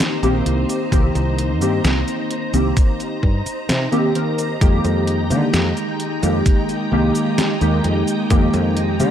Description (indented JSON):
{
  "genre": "vaporwave",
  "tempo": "65 BPM",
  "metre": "4/4",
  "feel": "straight",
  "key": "C minor",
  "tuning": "A4 = 440 Hz",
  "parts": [
    { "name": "warbly lo-fi synth keys", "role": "accompaniment", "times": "0.0-9.1 s", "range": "Eb3 to Bb4", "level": "-20 LUFS", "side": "equal", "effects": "ensemble chorus, analog delay" },
    { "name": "soft string machine", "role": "sustained chords", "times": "0.0-9.1 s", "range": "Ab3 to Bb5", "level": "-25 LUFS", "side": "equal", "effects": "ensemble chorus" },
    { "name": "detuned 8-bit digital drum machine", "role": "drums", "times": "0.0-9.1 s", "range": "cabasa, hi-hat, snare drum", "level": "-24 LUFS", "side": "equal", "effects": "none" },
    { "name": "woody fretless electric bass", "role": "bass", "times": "0.2-9.1 s", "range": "Bb1 to D3", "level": "-20 LUFS", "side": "equal", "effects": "none" },
    { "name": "electronic kick drum", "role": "drums", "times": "0.9-8.5 s", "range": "none", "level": "-15 LUFS", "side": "equal", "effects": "none" }
  ],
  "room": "light reverb, digital ambience",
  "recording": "none",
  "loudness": "-16 LUFS",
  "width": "side -9 dB against mid",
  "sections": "0.0-9.1 A section",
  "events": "none",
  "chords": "0.0 Cm7; 4.6 Fm11",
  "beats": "0.00 | 0.92 1.84 2.77 3.69 | 4.61 5.54 6.46 7.38 | 8.30"
}